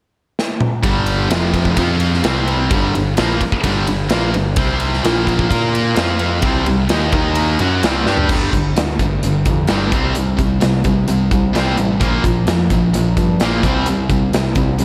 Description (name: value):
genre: hard rock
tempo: 129 BPM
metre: 4/4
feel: straight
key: unclear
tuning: A4 = 438 Hz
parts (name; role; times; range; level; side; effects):
- big rock drum kit; drums; 0.4-14.8 s; crash cymbal, hi-hat, kick drum, ride cymbal, snare drum, toms; -21 LUFS; equal; none
- high-gain distorted guitar; riff; 0.8-14.8 s; F2 to Bb4; -22 LUFS; equal; distortion
- overdriven semi-hollow guitar; riff; 0.8-14.8 s; F2 to Bb4; -22 LUFS; equal; none
- growling picked electric bass; bass; 0.8-14.8 s; F1 to Bb2; -23 LUFS; equal; overdrive
room: moderate lush hall reverb, RT60 1.9 s, small room ambience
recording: big arena sound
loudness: -16 LUFS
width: mono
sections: 0.8-8.3 A section; 8.3-14.8 B section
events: drum fill 0.4-0.8, 8.1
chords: 0.0 N.C.; 0.8 G5; 1.3 F5; 2.2 C5; 2.7 G5; 4.6 C5; 5.0 Bb5; 6.0 F5; 6.4 C5; 7.1 Eb5; 7.6 C5; 8.3 G5; 9.9 C5; 12.0 Bb5; 13.6 C5